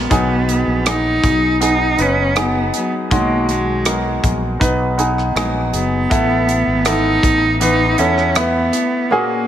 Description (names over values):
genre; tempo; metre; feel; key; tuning
pop ballad; 80 BPM; 4/4; straight; B major; A4 = 444 Hz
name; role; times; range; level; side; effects
warm cello; melody; 0.0-9.5 s; G#3 to D#4; -18 LUFS; equal; none
clear concert grand piano; accompaniment; 0.0-9.5 s; A#2 to B4; -19 LUFS; right 1 dB; none
nylon-string guitar; arpeggios; 0.0-9.5 s; B2 to A#4; -26 LUFS; left 4 dB; none
fretless electric bass; bass; 0.0-8.7 s; F#1 to E2; -21 LUFS; equal; none
modern studio drum kit; drums; 0.1-8.9 s; hi-hat, kick drum, rim click; -21 LUFS; equal; none
room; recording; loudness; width
light reverb, small room ambience; none; -14 LUFS; side -10 dB against mid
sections
0.1-9.5 A section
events
none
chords
0.1 B6; 6.1 Asus2